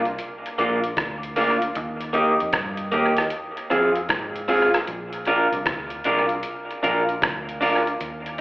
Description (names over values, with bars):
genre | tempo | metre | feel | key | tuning
roots reggae | 77 BPM | 4/4 | swing 65% on 16ths | Bb mixolydian | A4 = 440 Hz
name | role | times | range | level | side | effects
vintage muted fingered electric bass | bass | 0.0-8.4 s | Bb1 to Ab2 | -35 LUFS | equal | none
dusty soul sampler-style drum kit | drums | 0.1-8.4 s | hi-hat, kick drum, rim click | -26 LUFS | equal | tape echo, slapback echo
electric guitar through a small old amp | accompaniment | 0.6-7.8 s | Bb3 to Bb4 | -21 LUFS | equal | dub echo, slapback echo
room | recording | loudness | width
moderate plate reverb, RT60 2.5 s | live gig heard through the venue's PA, club reverb, telephone sound | -20 LUFS | side -19 dB against mid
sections
0.0-8.4 A section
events
none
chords
0.0 Bb; 1.8 Eb; 3.3 Fm; 4.9 Bb